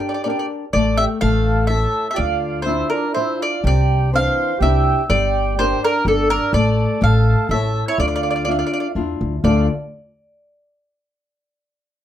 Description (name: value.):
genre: italian folk, Italian serenade.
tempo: 124 BPM.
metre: 3/4.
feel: straight.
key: D minor.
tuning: A4 = 440 Hz.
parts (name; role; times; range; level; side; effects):
mandolin; melody; 0.0-9.7 s; A4 to F5; -21 LUFS; equal; none.
mellow accordion; second line; 0.0-9.7 s; D4 to C5; -24 LUFS; right 7 dB; slapback echo.
flamenco guitar; accompaniment; 0.0-9.7 s; C3 to E5; -24 LUFS; left 5 dB; none.
upright bass; bass; 0.7-9.7 s; G1 to E2; -19 LUFS; equal; none.
room: moderate small room reverb, RT60 0.6 s.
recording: none.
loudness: -16 LUFS.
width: side -11 dB against mid.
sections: 0.0-3.6 A section; 3.6-9.4 B section; 9.4-10.9 C section.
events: none.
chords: 0.0 Gm; 0.7 Asus4; 1.2 A; 2.2 Dmadd9; 3.6 Cadd9; 5.1 Gm; 6.5 Asus4; 7.0 A; 8.0 Dmadd9; 9.4 Dm.